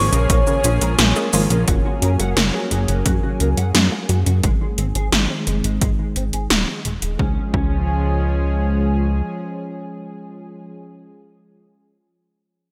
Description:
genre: synthwave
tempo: 87 BPM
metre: 4/4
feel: straight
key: Db major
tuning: A4 = 440 Hz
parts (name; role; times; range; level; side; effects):
- warm velvety synth lead; melody; 0.0-1.3 s; Db5; -28 LUFS; equal; chorus, vintage 12-bit sampler grit, delay
- soft synth bell; second line; 0.0-1.3 s; Db6; -29 LUFS; equal; chorus, phaser, digital delay
- lush unison pad; sustained chords; 0.0-10.7 s; Eb3 to Ab4; -28 LUFS; equal; chorus, sidechain pumping
- analog pluck; arpeggios; 0.0-7.7 s; Bb2 to Eb4; -32 LUFS; equal; none
- chorused synth bass; bass; 0.0-9.2 s; Eb1 to Gb2; -22 LUFS; equal; tube saturation
- electric guitar at the edge of break-up; riff; 0.1-7.7 s; Ab3 to Gb5; -34 LUFS; equal; ensemble chorus, low-pass filter, digital delay
- 80s electronic pad drums; drums; 0.1-7.2 s; cabasa, hi-hat, snare drum; -22 LUFS; equal; overdrive
- electronic kick drum; drums; 0.3-7.7 s; none; -23 LUFS; equal; overdrive
room: moderate lush hall reverb, RT60 2.0 s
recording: bright 1980s-style digital production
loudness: -19 LUFS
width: mono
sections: 0.0-1.7 A section; 1.7-7.2 B section; 7.2-10.0 C section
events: filter sweep on analog synth bass 1.7-7.2; filter sweep on analog synth pad 1.7-7.2; filter sweep on clean electric guitar 1.7-7.2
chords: 0.0 Db6; 1.7 Gbadd9; 4.4 Ab; 7.2 Db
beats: 0.30 0.99 | 1.68 2.37 3.06 3.75 | 4.44 5.12 5.82 6.50 | 7.19 7.88 8.57 9.26

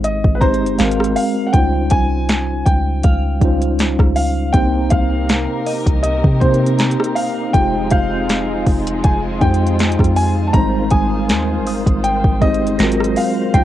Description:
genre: contemporary R&B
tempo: 80 BPM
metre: 4/4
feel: swing 54% on 16ths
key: unclear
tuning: A4 = 441 Hz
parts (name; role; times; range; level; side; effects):
- warm concert grand piano; melody; 0.0-13.6 s; B4 to Bb5; -21 LUFS; left 1 dB; plate reverb
- mellow tine electric piano; accompaniment; 0.0-13.6 s; G3 to F5; -19 LUFS; equal; medium stereo tremolo, plate reverb
- soft 808-style bass; bass; 0.0-13.6 s; F1 to C3; -19 LUFS; equal; none
- smooth R&B drum kit; drums; 0.0-13.6 s; hi-hat, kick drum, rim click, snare drum; -16 LUFS; equal; overdrive, cassette tape
- glassy synth bell; texture; 0.4-13.6 s; Eb5 to C7; -30 LUFS; equal; chorus, tremolo, analog delay, plate reverb
- dark studio string section; sustained chords; 4.5-13.6 s; C3 to C5; -25 LUFS; equal; sidechain pumping, plate reverb
room: light reverb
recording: home recording on cassette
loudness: -13 LUFS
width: side -12 dB against mid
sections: 0.0-13.6 A section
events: none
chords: 0.0 Abmaj7; 0.8 Ab13; 1.5 Dbmaj9#11; 4.5 Cm7; 7.5 Fm9; 10.5 Abmaj7; 12.8 Ab13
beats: 0.04 0.79 | 1.54 2.29 3.04 3.79 | 4.54 5.29 6.04 6.79 | 7.54 8.29 9.04 9.79 | 10.54 11.29 12.04 12.79 | 13.54

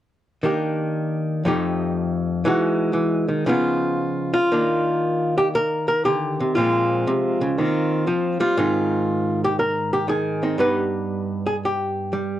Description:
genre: solo jazz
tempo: 118 BPM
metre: 4/4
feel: swing 68% on 8ths, rubato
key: Eb major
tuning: A4 = 440 Hz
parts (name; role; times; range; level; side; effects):
- archtop guitar, miked and amplified; solo; 0.4-12.4 s; F2 to B4; -19 LUFS; equal; none
room: light reverb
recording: worn, warbling old tape, cassette tape, warbly pitch drift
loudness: -19 LUFS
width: side -12 dB against mid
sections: 0.4-4.5 A section; 4.5-12.4 B section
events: none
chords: 0.4 Ebmaj7; 1.5 F9; 2.4 Emaj9; 3.4 Db9; 4.5 Ebmaj9; 6.6 Bbm9; 7.6 Eb69; 8.6 Ab6; 10.6 G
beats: | 0.44 0.95 1.46 1.95 | 2.44 2.94 3.45 3.97 | 4.50 5.03 5.54 6.05 | 6.56 7.07 7.57 8.07 | 8.57 9.07 9.57 10.07 | 10.58 11.09 11.60 12.13

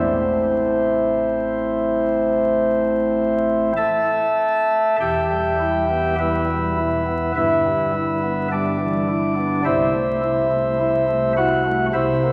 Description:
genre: classical, chorale-style piece for pipe organ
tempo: 45-53 BPM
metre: 4/4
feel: rubato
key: A minor, E minor from 5.0 s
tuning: A4 = 440 Hz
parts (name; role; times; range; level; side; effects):
- pipe organ, flutes; solo; 0.0-12.3 s; E1 to A5; -20 LUFS; equal; none
room: wet concert hall reverb, RT60 2.5 s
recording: vinyl crackle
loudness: -20 LUFS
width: mono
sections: 0.0-5.0 A section; 5.0-12.3 B section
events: none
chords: 0.0 Am; 5.0 Em; 7.4 Em/G; 9.7 Am/C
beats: 1.20 2.46 3.76 | 4.99 6.18 7.36 8.51 | 9.65 10.80 11.94

